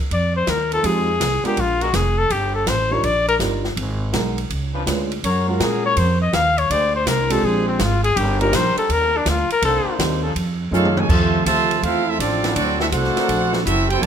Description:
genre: jazz, big band swing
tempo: 164 BPM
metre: 4/4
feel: swing 66% on 8ths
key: unclear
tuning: A4 = 439 Hz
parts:
  - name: breathy trumpet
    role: melody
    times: 0.1-10.0 s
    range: C4 to F5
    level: -19 LUFS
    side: left 3 dB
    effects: none
  - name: upright bass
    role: bass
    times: 0.1-14.1 s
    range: F1 to Bb2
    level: -22 LUFS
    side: right 1 dB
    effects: none
  - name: open jazz drum kit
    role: drums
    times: 0.1-14.1 s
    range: crash cymbal, hi-hat, kick drum, ride cymbal, snare drum, toms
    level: -25 LUFS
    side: right 1 dB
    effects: none
  - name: clear trombone section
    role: sustained chords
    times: 0.7-1.9, 4.7-13.3 s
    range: F3 to C5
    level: -29 LUFS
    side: equal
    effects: none
  - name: warm grand piano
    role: accompaniment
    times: 0.8-10.9 s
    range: G3 to Cb5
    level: -24 LUFS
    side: right 2 dB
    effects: none
  - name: warm trumpet section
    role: melody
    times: 10.7-14.1 s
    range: C4 to A5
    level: -20 LUFS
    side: right 3 dB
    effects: none
  - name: clear trombone section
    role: second line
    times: 10.7-14.1 s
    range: C3 to G4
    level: -23 LUFS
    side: right 1 dB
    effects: none
room: moderate large studio reverb, RT60 1.2 s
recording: none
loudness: -17 LUFS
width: side -8 dB against mid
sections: 0.0-11.1 A section; 11.1-14.1 B section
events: trumpet solo 0.0-11.1; drum fill 10.7-11.1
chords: 0.0 Bb; 0.8 Fm7; 1.6 Bb7b9; 2.3 Ebmaj9; 3.8 Abm9; 4.5 Db7b9; 5.2 Gbmaj7; 6.7 Bb13; 8.2 Ebmaj7; 9.6 Cm9; 10.4 F7alt; 11.1 Fmaj7; 12.6 D7b13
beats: 0.11 0.48 | 0.84 1.21 1.58 1.94 | 2.31 2.67 3.04 3.40 | 3.77 4.14 4.50 4.87 | 5.23 5.60 5.96 6.33 | 6.70 7.06 7.43 7.79 | 8.16 8.53 8.89 9.26 | 9.62 9.99 10.36 10.72 | 11.09 11.46 11.82 12.19 | 12.55 12.92 13.29 13.65 | 14.02

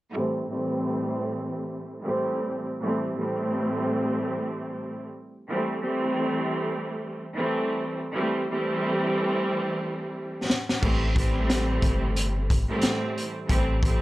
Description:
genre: hip hop, boom-bap hip-hop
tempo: 90 BPM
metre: 4/4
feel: swing 59% on 16ths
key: unclear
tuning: A4 = 437 Hz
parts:
  - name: warm studio string section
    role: accompaniment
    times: 0.1-14.0 s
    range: A2 to C4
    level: -26 LUFS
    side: right 1 dB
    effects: cassette tape, high-pass filter, low-pass filter, plate reverb
  - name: raw garage drum kit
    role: drums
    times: 10.5-14.0 s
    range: crash cymbal, hi-hat, kick drum, snare drum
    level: -25 LUFS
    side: equal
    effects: none
  - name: soft dub sub bass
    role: bass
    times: 10.8-14.0 s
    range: G1 to A1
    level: -27 LUFS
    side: equal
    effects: none
room: moderate small room reverb, RT60 0.5 s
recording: none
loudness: -24 LUFS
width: side -17 dB against mid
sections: 0.2-10.8 A section; 10.8-14.0 B section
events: filter sweep on string section 0.2-10.8; drum fill 9.5-10.8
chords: 0.2 C6/A; 5.5 Am7; 10.8 C6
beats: | 0.16 0.83 1.49 2.16 | 2.83 3.49 4.16 4.83 | 5.49 6.16 6.83 7.49 | 8.16 8.83 9.49 10.16 | 10.83 11.49 12.16 12.83 | 13.49

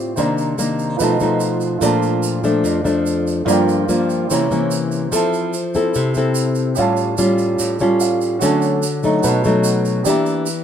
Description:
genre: bossa nova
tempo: 146 BPM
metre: 4/4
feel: straight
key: unclear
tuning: A4 = 440 Hz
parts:
  - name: nylon-string guitar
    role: accompaniment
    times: 0.0-10.6 s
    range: F2 to A4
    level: -16 LUFS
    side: left 1 dB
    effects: none
  - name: warm baby grand piano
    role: accompaniment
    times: 0.0-10.6 s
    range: Bb3 to Bb5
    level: -23 LUFS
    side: right 6 dB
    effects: none
  - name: tube shaker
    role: percussion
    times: 0.2-10.6 s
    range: none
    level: -28 LUFS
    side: right 6 dB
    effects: none
room: light reverb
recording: minimal, uncompressed stereo recording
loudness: -15 LUFS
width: side -8 dB against mid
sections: 0.0-10.6 A section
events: grand piano fill 7.6-8.4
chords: 0.2 Cm9; 1.0 B7#11; 1.8 Bbmaj7; 3.5 Gm7; 4.3 C7b9; 5.1 Fmaj7; 6.8 Aaug7; 8.4 Dmaj7; 9.2 B7; 10.1 Em7b5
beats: | 0.18 0.59 1.00 1.41 | 1.82 2.24 2.65 3.06 | 3.47 3.89 4.30 4.71 | 5.12 5.53 5.95 6.36 | 6.77 7.18 7.59 8.00 | 8.41 8.83 9.24 9.65 | 10.06 10.47

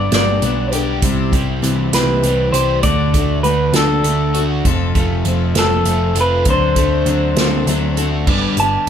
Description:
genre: folk rock and heartland rock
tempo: 66 BPM (dotted quarters)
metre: 6/8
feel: straight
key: unclear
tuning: A4 = 439 Hz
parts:
  - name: electric guitar through a small old amp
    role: melody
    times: 0.0-8.9 s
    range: A4 to A5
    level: -18 LUFS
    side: left 1 dB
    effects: none
  - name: picked steel-string acoustic guitar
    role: accompaniment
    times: 0.0-8.9 s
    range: G2 to B4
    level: -22 LUFS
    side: left 9 dB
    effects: none
  - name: overdriven semi-hollow guitar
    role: riff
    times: 0.0-8.9 s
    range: F2 to G4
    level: -22 LUFS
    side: right 3 dB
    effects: none
  - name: hollow-body short-scale picked electric bass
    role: bass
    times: 0.0-8.9 s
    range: F1 to D2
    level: -19 LUFS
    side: right 1 dB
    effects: none
  - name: unplugged drum kit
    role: drums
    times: 0.1-8.9 s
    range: crash cymbal, hi-hat, kick drum, snare drum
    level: -19 LUFS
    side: right 1 dB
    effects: none
room: light reverb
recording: none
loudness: -13 LUFS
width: side -8 dB against mid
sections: 0.0-8.3 A section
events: none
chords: 0.0 G; 1.0 C; 2.8 D; 4.7 F; 6.5 D7; 8.3 G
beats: 0.13 | 1.03 1.94 | 2.85 3.75 | 4.66 5.57 | 6.47 7.38 | 8.28

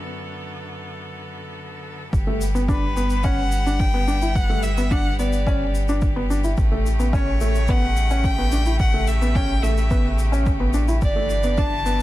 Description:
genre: piano and strings electronica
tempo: 108 BPM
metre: 4/4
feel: straight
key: unclear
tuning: A4 = 440 Hz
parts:
  - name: clear string quartet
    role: sustained chords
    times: 0.0-12.0 s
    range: F#2 to A4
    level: -31 LUFS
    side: equal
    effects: sidechain pumping
  - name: round analog bass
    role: bass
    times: 2.1-12.0 s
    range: G1 to A1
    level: -22 LUFS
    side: equal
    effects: sidechain pumping
  - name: electronic kick drum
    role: drums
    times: 2.1-11.7 s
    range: none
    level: -22 LUFS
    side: equal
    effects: overdrive
  - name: shaker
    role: drums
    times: 2.1-12.0 s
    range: none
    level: -39 LUFS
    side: left 4 dB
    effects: low-pass filter on perc, low-pass filter on room
  - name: felt-muted upright piano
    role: riff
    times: 2.3-12.0 s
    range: A3 to E4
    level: -26 LUFS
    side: left 1 dB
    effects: ping-pong delay
  - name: clear violin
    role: melody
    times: 2.7-12.0 s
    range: B4 to A5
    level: -27 LUFS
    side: left 1 dB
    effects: ping-pong delay
room: studio reverb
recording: none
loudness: -18 LUFS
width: side -16 dB against mid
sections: 0.0-2.1 A section; 2.1-12.0 B section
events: break 0.0-2.1; filter sweep on felt piano 0.0-2.1; drop 2.1-12.0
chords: 0.0 Bm7/F#; 2.1 Gmaj7; 6.6 A7; 11.0 Em7/G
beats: 0.47 1.02 1.58 | 2.13 2.69 3.24 3.80 | 4.36 4.91 5.47 6.02 | 6.58 7.13 7.69 8.24 | 8.80 9.36 9.91 10.47 | 11.02 11.58

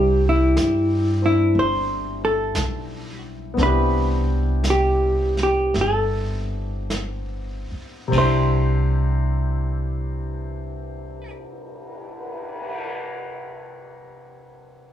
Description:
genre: jazz ballad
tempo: 48-62 BPM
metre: 4/4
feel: swing 66% on 8ths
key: C major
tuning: A4 = 440 Hz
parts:
  - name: hollow-body jazz guitar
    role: melody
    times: 0.0-11.3 s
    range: E4 to C5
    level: -21 LUFS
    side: right 1 dB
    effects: none
  - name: warm grand piano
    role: accompaniment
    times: 0.0-14.9 s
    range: C3 to C5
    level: -26 LUFS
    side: left 3 dB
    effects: none
  - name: upright bass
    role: bass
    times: 0.0-11.3 s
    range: G1 to G2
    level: -23 LUFS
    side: equal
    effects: none
  - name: vintage brush drum kit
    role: drums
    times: 0.6-12.9 s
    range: brushed snare drum, crash cymbal, cymbal swell, hi-hat, kick drum, snare drum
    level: -33 LUFS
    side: right 1 dB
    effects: none
room: light reverb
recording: small room ambience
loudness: -19 LUFS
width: side -10 dB against mid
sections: 0.0-8.1 A section; 8.1-13.1 B section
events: slowing down 0.0-8.1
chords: 0.0 Cmaj9; 8.1 Cadd9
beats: 0.57 1.55 2.56 | 3.58 4.65 5.75 6.91 | 8.13 9.38 10.62 11.87

